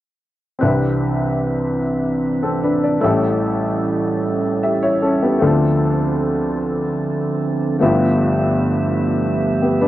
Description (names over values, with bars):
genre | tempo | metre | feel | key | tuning
gospel | 50 BPM (dotted quarters) | 6/8 | straight | C major | A4 = 439 Hz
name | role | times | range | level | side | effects
warm upright piano | accompaniment | 0.6-9.9 s | G1 to E5 | -18 LUFS | left 2 dB | none
percussive tonewheel organ | sustained chords | 0.6-9.9 s | E3 to E5 | -21 LUFS | right 4 dB | fast rotary speaker
room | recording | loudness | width
light reverb | dry, close 1970s-style studio recording | -16 LUFS | side -14 dB against mid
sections
0.6-9.9 A section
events
none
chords
0.6 Cmaj9; 3.0 A7; 5.4 Dm7; 7.8 G13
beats
| 0.62 1.83 | 3.03 4.22 | 5.42 6.62 | 7.82 9.01